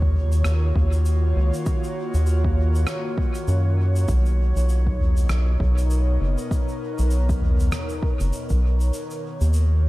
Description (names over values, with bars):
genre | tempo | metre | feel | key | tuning
ambient dub | 99 BPM | 4/4 | swing 58% on 16ths | Eb minor | A4 = 440 Hz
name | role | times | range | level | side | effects
airy breathy pad | sustained chords | 0.0-9.9 s | B2 to Db5 | -29 LUFS | equal | chorus
round analog bass | bass | 0.0-9.9 s | F#1 to Gb2 | -19 LUFS | equal | none
electronic kick drum | drums | 0.0-8.6 s | none | -24 LUFS | equal | none
soft-mallet drum kit | drums | 0.1-9.7 s | rim click, shaker, toms | -32 LUFS | left 1 dB | dub echo
room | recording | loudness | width
small room ambience | dark, warm production | -19 LUFS | side -18 dB against mid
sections
0.0-8.9 A section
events
none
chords
0.0 Ebm7; 4.1 Bmaj7; 8.9 Ebm7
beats
0.45 1.06 | 1.66 2.27 2.88 3.48 | 4.09 4.69 5.30 5.91 | 6.51 7.12 7.72 8.33 | 8.94 9.54